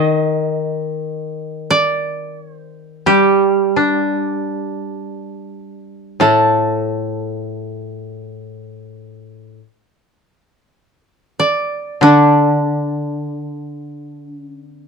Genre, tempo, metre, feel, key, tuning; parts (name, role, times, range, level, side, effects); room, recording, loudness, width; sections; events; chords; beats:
japanese traditional, Japanese chamber music; free time; A4 = 440 Hz
koto; melody; 0.0-14.9 s; D4 to Eb5; -16 LUFS; right 3 dB
koto; accompaniment; 0.0-14.9 s; A2 to D4; -18 LUFS; left 2 dB
light reverb; dark, warm production; -14 LUFS; side -5 dB against mid
0.0-14.9 A section
free time